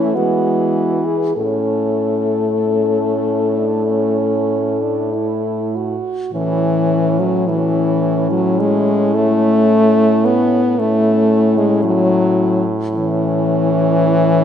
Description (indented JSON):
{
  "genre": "classical, lyrical piece for horn quartet",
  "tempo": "47-57 BPM",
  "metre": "4/4",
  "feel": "rubato",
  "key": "A major",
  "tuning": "A4 = 439 Hz",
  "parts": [
    { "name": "mellow French horn", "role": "melody", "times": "0.0-14.4 s", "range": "E4 to A4", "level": "-21 LUFS", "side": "left 6 dB", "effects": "none" },
    { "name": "warm French horn", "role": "second line", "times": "0.0-14.4 s", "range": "B3 to F#4", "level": "-21 LUFS", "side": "right 6 dB", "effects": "none" },
    { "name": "warm French horn", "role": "accompaniment", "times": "0.0-14.4 s", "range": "E3 to B3", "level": "-16 LUFS", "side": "left 2 dB", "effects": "none" },
    { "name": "warm French horn", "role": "bass", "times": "0.0-14.4 s", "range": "A2 to E3", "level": "-22 LUFS", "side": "right 3 dB", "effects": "none" }
  ],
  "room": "moderate concert hall reverb, RT60 1.8 s",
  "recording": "faint mains hum",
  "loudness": "-14 LUFS",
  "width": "side -8 dB against mid",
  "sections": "0.0-6.3 A section; 6.3-14.4 A section",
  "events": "none",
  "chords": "0.1 E; 1.4 A"
}